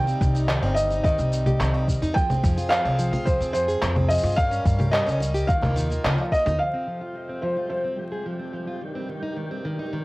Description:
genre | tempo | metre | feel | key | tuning
folktronica | 108 BPM | 4/4 | straight | F minor | A4 = 440 Hz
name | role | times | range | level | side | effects
felt-muted upright piano | melody | 0.0-8.5 s | C5 to G5 | -25 LUFS | equal | cassette tape, tape echo
hand-pumped harmonium | sustained chords | 0.0-10.0 s | C2 to Bb4 | -34 LUFS | equal | cassette tape
picked plugged-in steel-string acoustic guitar | arpeggios | 0.0-10.0 s | Eb3 to Ab4 | -31 LUFS | equal | low-pass filter, cassette tape
upright bass | bass | 0.0-6.6 s | G1 to G2 | -25 LUFS | equal | none
electronic cabasa, handclaps and congas | drums | 0.1-6.6 s | none | -27 LUFS | equal | cassette tape
electronic kick drum | drums | 0.2-6.4 s | none | -22 LUFS | equal | cassette tape
flickering grainy texture | texture | 7.0-10.0 s | G3 to G6 | -37 LUFS | right 1 dB | built-in reverb, cassette tape
room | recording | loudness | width
light reverb | home recording on cassette, vinyl crackle | -21 LUFS | side -21 dB against mid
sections
0.0-6.6 A section; 6.6-10.0 B section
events
band accent 6.0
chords
0.0 Cm; 2.2 Fm; 4.4 Gdim; 5.5 Ebsus2; 6.6 F5; 8.8 Cm

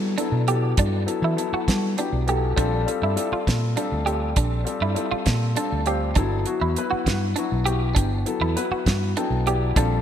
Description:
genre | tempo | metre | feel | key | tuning
electric jazz fusion | 67 BPM (dotted quarters) | 6/8 | straight | G major | A4 = 440 Hz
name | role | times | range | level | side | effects
warm grand piano | accompaniment | 0.0-10.0 s | F#3 to G5 | -26 LUFS | left 6 dB | lush chorus
fingered electric bass | bass | 0.0-10.0 s | G1 to G3 | -24 LUFS | equal | none
clean electric guitar | stabs | 0.2-10.0 s | D4 to G4 | -28 LUFS | right 5 dB | analog chorus, digital delay
damped 70s drum kit | drums | 0.2-9.9 s | hi-hat, kick drum, snare drum | -24 LUFS | right 1 dB | none
room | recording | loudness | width
light reverb, small room ambience | bright 1980s-style digital production | -20 LUFS | side -9 dB against mid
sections
0.0-10.0 A section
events
grand piano fill 8.9-9.8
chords
0.0 Gmaj9; 2.6 Bbmaj9; 6.2 Gmaj9

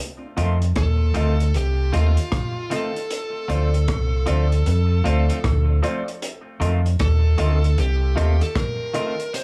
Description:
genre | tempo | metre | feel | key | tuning
roots reggae | 77 BPM | 4/4 | swing 64% on 16ths | F mixolydian | A4 = 443 Hz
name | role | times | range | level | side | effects
semi-hollow electric guitar | accompaniment | 0.4-9.1 s | Eb3 to F4 | -33 LUFS | equal | tremolo, tape echo, plate reverb
dark upright piano | stabs | 0.4-9.2 s | F4 to Eb5 | -32 LUFS | equal | plate reverb
deep dub fingered electric bass | bass | 0.4-8.4 s | C2 to F2 | -20 LUFS | equal | none
crunchy breakbeat drum kit | drums | 0.4-9.4 s | hi-hat, kick drum, rim click | -30 LUFS | equal | none
fuzz lead guitar | melody | 0.8-9.4 s | F4 to C5 | -31 LUFS | equal | distortion, tape echo, plate reverb
room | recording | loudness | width
light reverb | small room ambience | -21 LUFS | mono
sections
0.0-9.4 A section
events
none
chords
0.0 F7; 3.1 Dm7; 6.2 F7

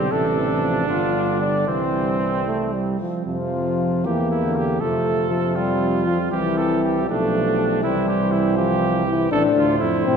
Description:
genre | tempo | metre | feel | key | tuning
classical, brass quintet | 74-83 BPM (dotted quarters) | 6/8 | rubato | C major, F major from 3.3 s | A4 = 440 Hz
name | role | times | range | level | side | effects
mellow cornet | melody | 0.0-10.2 s | F4 to D5 | -28 LUFS | left 5 dB | none
warm trumpet | second line | 0.0-10.2 s | C4 to A4 | -26 LUFS | right 7 dB | none
clear trombone | accompaniment | 0.0-10.2 s | A2 to A3 | -26 LUFS | right 4 dB | none
mellow French horn | accompaniment | 0.0-10.2 s | E3 to D4 | -22 LUFS | left 3 dB | none
mellow tuba | bass | 0.0-10.2 s | G1 to A2 | -25 LUFS | right 3 dB | none
room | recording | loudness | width
wet church reverb, RT60 2.9 s | dark, warm production | -18 LUFS | side -6 dB against mid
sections
0.0-3.3 A section; 3.3-10.2 B section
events
none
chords
0.1 F/A; 0.9 G5; 1.7 C; 3.3 F5; 4.1 Em7b5; 4.8 F; 6.3 C; 7.1 G7/B; 7.8 C; 9.3 Am

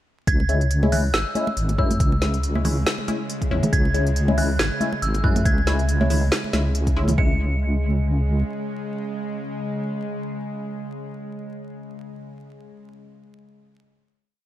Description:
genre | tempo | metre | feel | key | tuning
deep dubstep | 139 BPM | 4/4 | swing 56% on 16ths, half-time | C# minor | A4 = 441 Hz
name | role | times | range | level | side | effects
dark detuned synth bell | melody | 0.3-11.4 s | E6 to C#7 | -29 LUFS | right 2 dB | chorus, dub echo
bowed-like drone | sustained chords | 1.3-11.4 s | C#3 to G#3 | -31 LUFS | right 1 dB | built-in reverb
deep soft wobble bass | bass | 0.3-8.4 s | G#1 to F#2 | -21 LUFS | equal | chorus
deep house drum kit | drums | 0.3-7.2 s | hi-hat, snare drum | -27 LUFS | equal | none
electronic kick drum | drums | 0.3-7.3 s | none | -21 LUFS | equal | none
congas | percussion | 0.4-7.2 s | none | -27 LUFS | right 2 dB | none
filtered dub chord stab | stabs | 0.5-11.4 s | G#3 to E4 | -28 LUFS | left 4 dB | phaser, dub echo
room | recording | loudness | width
light reverb | vinyl crackle | -20 LUFS | side -13 dB against mid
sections
0.3-7.2 drop; 7.2-10.6 final chord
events
drop 0.3-7.2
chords
0.3 C#m

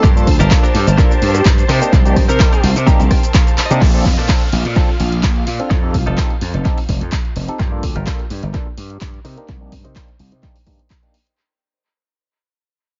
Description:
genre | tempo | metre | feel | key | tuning
filtered disco house | 127 BPM | 4/4 | swing 53% on 16ths | unclear | A4 = 440 Hz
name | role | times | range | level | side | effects
warm horn section | melody | 0.0-2.8 s | G4 to Bb4 | -27 LUFS | equal | sidechain pumping, low-pass filter, tape echo
barky tine electric piano | accompaniment | 0.0-11.1 s | Bb3 to A4 | -27 LUFS | equal | phaser, sidechain pumping, low-pass filter
phased string machine | sustained chords | 0.0-7.6 s | F4 to A5 | -28 LUFS | equal | ensemble chorus, phaser, sidechain pumping, low-pass filter
direct-recorded clean electric guitar | riff | 0.0-10.7 s | C4 to G5 | -27 LUFS | equal | sidechain pumping, low-pass filter, tape echo
gritty slap bass | bass | 0.0-10.8 s | F1 to C3 | -20 LUFS | equal | overdrive, sidechain pumping, low-pass filter
electronic kick drum | drums | 0.0-11.0 s | none | -16 LUFS | equal | none
punchy analog drum machine | drums | 0.0-11.4 s | handclaps, hi-hat, rim click, shaker | -27 LUFS | equal | sidechain pumping on hats, sidechain pumping on perc, tape echo
downlifter | sound effects | 3.8-7.6 s | none | -34 LUFS | equal | none
room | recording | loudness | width
light reverb, digital ambience | echo-heavy mix, nothing above 7.5 kHz | -14 LUFS | mono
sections
0.0-3.8 A section; 3.8-11.4 B section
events
drop 0.0-3.8; clean electric guitar fill 2.9-3.8; drum fill 3.6; fade-out 3.8-11.4; filter sweep 3.8-11.4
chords
0.0 Gm7; 1.7 Cm7; 3.8 Bbmaj9; 5.7 F7; 7.6 Gm7; 9.2 Cm7

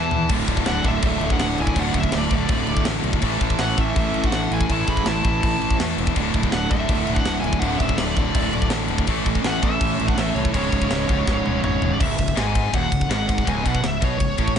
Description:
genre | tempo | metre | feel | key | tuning
heavy metal | 164 BPM | 4/4 | straight | unclear | A4 = 439 Hz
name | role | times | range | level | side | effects
high-gain lead guitar | melody | 0.0-14.6 s | C#5 to B5 | -27 LUFS | equal | distortion, ping-pong delay
high-gain distorted guitar | riff | 0.0-14.6 s | C#2 to A3 | -26 LUFS | left 12 dB | distortion
sludgy distorted guitar | riff | 0.0-14.6 s | C#2 to A3 | -26 LUFS | right 13 dB | overdrive
fuzz fingered electric bass | bass | 0.0-14.6 s | C#1 to E2 | -27 LUFS | equal | overdrive
tight metal drum kit | drums | 0.1-14.6 s | crash cymbal, kick drum, ride cymbal, snare drum, toms | -23 LUFS | equal | none
high-gain lead guitar | second line | 0.7-11.6 s | G#3 to G#4 | -32 LUFS | right 2 dB | distortion, ping-pong delay
room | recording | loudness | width
studio ambience | nothing above 10.5 kHz | -18 LUFS | side -8 dB against mid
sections
0.3-12.0 A section; 12.0-14.6 B section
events
drum fill 0.0, 11.3-12.0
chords
0.3 D5; 3.2 A; 6.2 D5; 9.1 A; 10.5 C#5; 12.0 C#m

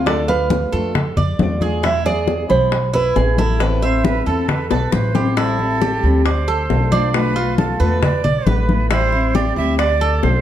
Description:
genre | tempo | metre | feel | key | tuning
latin, Cuban son and guajira | 136 BPM | 4/4 | straight | A harmonic minor, A minor from 5.4 s | A4 = 445 Hz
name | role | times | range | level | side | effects
nylon-string guitar | melody | 0.0-4.2 s | A4 to E5 | -20 LUFS | right 4 dB | none
fingerpicked steel-string acoustic guitar | accompaniment | 0.0-10.4 s | B2 to F4 | -24 LUFS | left 5 dB | none
Cuban tres | arpeggios | 0.0-10.4 s | D4 to B5 | -23 LUFS | right 4 dB | none
upright bass | bass | 0.0-10.4 s | A1 to F2 | -20 LUFS | equal | none
bongos | percussion | 0.1-10.4 s | none | -24 LUFS | left 7 dB | none
congas | percussion | 0.1-10.4 s | none | -22 LUFS | left 2 dB | none
breathy bright jazz flute | second line | 3.8-10.4 s | A4 to E5 | -23 LUFS | right 4 dB | none
room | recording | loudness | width
moderate large studio reverb, RT60 1.1 s | dark, warm production | -15 LUFS | side -11 dB against mid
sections
0.0-5.4 A section; 5.4-10.4 B section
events
drum fill 4.7-5.4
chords
0.1 Dm; 1.8 E; 3.6 Amadd9; 5.4 Am7; 6.3 Dm; 7.1 Bm7b5; 8.0 E7sus4; 8.9 Am7; 9.8 Dm

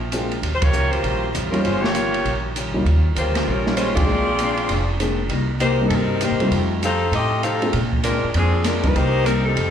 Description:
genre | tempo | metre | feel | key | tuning
jazz, big band swing | 197 BPM | 4/4 | swing 63% on 8ths | Bb mixolydian | A4 = 440 Hz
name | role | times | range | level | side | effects
picked steel-string acoustic guitar | accompaniment | 0.0-9.7 s | Bb2 to G4 | -28 LUFS | left 5 dB | plate reverb, slapback echo
upright bass | bass | 0.0-9.7 s | F1 to C3 | -23 LUFS | right 1 dB | none
warm grand piano | accompaniment | 0.1-8.9 s | G3 to Ab4 | -25 LUFS | equal | plate reverb
open jazz drum kit | drums | 0.1-9.7 s | hi-hat, kick drum, ride cymbal, snare drum | -25 LUFS | right 2 dB | none
warm saxophone section | melody | 0.6-9.7 s | F3 to F5 | -22 LUFS | left 2 dB | plate reverb, slapback echo
room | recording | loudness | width
moderate club reverb, RT60 0.8 s | live gig heard through the venue's PA, club reverb | -18 LUFS | side -8 dB against mid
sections
0.0-9.7 A section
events
band accent 0.6, 3.9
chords
0.4 Eb9; 4.1 Bb9; 5.3 Cm7; 6.5 F9; 7.7 Bb9; 9.0 Cm7

